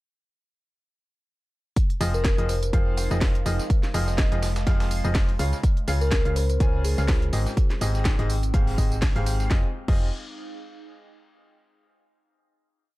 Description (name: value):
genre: piano house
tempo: 124 BPM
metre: 4/4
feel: swing 56% on 16ths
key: F minor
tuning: A4 = 440 Hz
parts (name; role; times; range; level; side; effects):
- breakbeat sampler-style drum kit; drums; 1.8-9.5 s; hi-hat, snare drum; -41 LUFS; equal; none
- electronic kick drum; drums; 1.8-10.0 s; none; -22 LUFS; equal; none
- house drum kit; drums; 1.8-10.0 s; crash cymbal, hi-hat, snare drum, tambourine; -33 LUFS; equal; none
- warbly tape-like pad; texture; 2.6-11.4 s; Ab3 to G5; -39 LUFS; right 2 dB; chorus, built-in reverb, sidechain pumping
- bright grand piano; riff; 2.0-10.1 s; Ab2 to Ab5; -31 LUFS; left 1 dB; sidechain pumping, dub echo
- solid FM bass; bass; 2.0-10.1 s; F1 to Db2; -25 LUFS; equal; tube saturation, sidechain pumping
- kalimba; melody; 2.1-8.7 s; Eb4 to F5; -33 LUFS; left 1 dB; dub echo
room: digital ambience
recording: dark, warm production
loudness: -21 LUFS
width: side -19 dB against mid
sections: 1.8-9.5 drop; 9.5-11.4 final chord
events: drop 1.8-9.5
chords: 1.8 Fm7; 5.4 Db; 7.3 Abmaj7; 9.5 Fm7